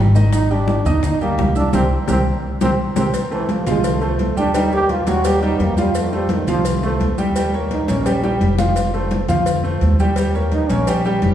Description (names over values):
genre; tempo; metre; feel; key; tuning
Afro-Cuban jazz; 171 BPM; 4/4; straight; F major; A4 = 440 Hz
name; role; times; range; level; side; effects
warm grand piano; accompaniment; 0.0-11.3 s; Eb3 to E6; -21 LUFS; equal; none
upright bass; bass; 0.0-11.3 s; F1 to F2; -20 LUFS; equal; none
bongos and cowbell; percussion; 0.1-11.3 s; none; -27 LUFS; left 3 dB; none
congas; percussion; 0.1-11.3 s; none; -23 LUFS; equal; none
maracas; percussion; 0.2-11.3 s; none; -38 LUFS; right 5 dB; none
warm trombone; melody; 0.3-8.2, 10.5-11.0 s; Eb3 to G4; -22 LUFS; right 2 dB; none
room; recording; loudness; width
wet church reverb, RT60 2.8 s; recorded in a church or concert hall, small room ambience; -15 LUFS; side -10 dB against mid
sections
0.0-3.1 A section; 3.1-11.3 B section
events
band accent 1.7-3.1; trombone solo 3.1-11.3; drum fill 8.2-8.8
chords
0.3 Abmaj9#11; 1.7 C5; 3.1 F; 4.5 Eb7; 5.9 F; 7.4 Eb7; 8.8 F; 10.2 Eb7